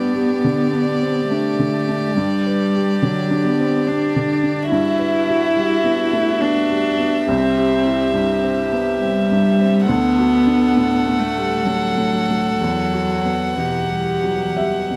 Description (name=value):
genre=neoclassical piano and strings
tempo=58-72 BPM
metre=3/4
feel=rubato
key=E minor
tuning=A4 = 443 Hz
part: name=warm violin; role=melody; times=0.0-15.0 s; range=D5 to F#5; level=-26 LUFS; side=equal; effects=none
part: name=warm cello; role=second line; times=0.0-14.6 s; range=E3 to E4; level=-22 LUFS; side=equal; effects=none
part: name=felt-muted upright piano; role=accompaniment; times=0.0-15.0 s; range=C2 to E5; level=-24 LUFS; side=equal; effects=none
part: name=rich viola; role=accompaniment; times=0.0-15.0 s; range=F#4 to A4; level=-28 LUFS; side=equal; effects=none
room=light reverb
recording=dark, warm production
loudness=-18 LUFS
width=mono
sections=0.0-15.0 A section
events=none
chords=0.0 G; 4.7 Emadd9/G; 7.3 C; 9.9 D; 12.6 Emadd9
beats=0.44 1.30 | 2.16 3.02 3.88 | 4.72 5.55 6.41 | 7.28 8.15 9.02 | 9.88 10.76 11.65 | 12.59 13.56 14.56